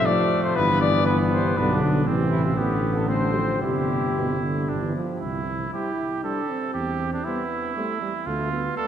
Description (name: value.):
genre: classical, brass quintet.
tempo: 118 BPM.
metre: 3/4.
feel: rubato.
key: C major.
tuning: A4 = 440 Hz.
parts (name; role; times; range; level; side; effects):
mellow cornet; melody; 0.0-8.9 s; E4 to D5; -26 LUFS; left 4 dB; none.
clear trumpet; second line; 0.0-8.9 s; A3 to A4; -29 LUFS; right 4 dB; none.
warm trombone; accompaniment; 0.0-8.9 s; G2 to E4; -28 LUFS; right 1 dB; none.
dark tuba; bass; 0.0-8.7 s; F1 to E2; -26 LUFS; right 2 dB; none.
mellow French horn; accompaniment; 0.1-8.9 s; D3 to B3; -29 LUFS; left 2 dB; none.
room: wet cathedral reverb, RT60 4.2 s.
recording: dark, warm production.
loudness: -21 LUFS.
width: side -9 dB against mid.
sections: 0.0-5.2 A section; 5.2-8.9 B section.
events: none.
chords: 0.0 F; 0.6 G; 2.1 Am; 3.6 Gsus4; 4.7 G5; 5.2 C; 6.8 C/E; 8.3 Dm.